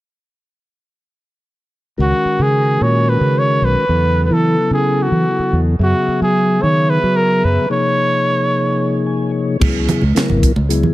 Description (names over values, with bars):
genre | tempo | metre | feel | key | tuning
electric jazz fusion | 220 BPM (eighths) | 7/8 | straight | C# dorian | A4 = 441 Hz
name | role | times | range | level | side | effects
warm trumpet | melody | 2.0-9.0 s | F#4 to C#5 | -17 LUFS | right 1 dB | tape echo
mellow tonewheel organ | accompaniment | 2.0-10.9 s | B#2 to G#5 | -19 LUFS | left 2 dB | slow rotary speaker
fingered electric bass | bass | 2.0-10.8 s | G#1 to F#3 | -16 LUFS | equal | none
crisp fusion drum kit | drums | 9.6-10.8 s | crash cymbal, hi-hat, kick drum, snare drum | -17 LUFS | right 1 dB | none
congas | percussion | 9.6-10.9 s | none | -19 LUFS | right 3 dB | none
room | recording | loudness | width
light reverb | none | -13 LUFS | side -16 dB against mid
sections
2.0-9.6 A section; 9.6-10.9 B section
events
break 7.7-9.6; tonewheel organ fill 8.8-9.6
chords
2.0 C#9sus4; 3.9 Esus24; 5.8 F#9sus4; 7.7 D#9sus4; 9.6 C#m7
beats
| 1.98 2.26 2.53 2.80 3.07 3.35 3.62 | 3.89 4.16 4.43 4.71 4.98 5.25 5.52 | 5.80 6.07 6.34 6.61 6.89 7.16 7.43 | 7.70 7.97 8.25 8.52 8.79 9.06 9.34 | 9.61 9.88 10.15 10.42 10.69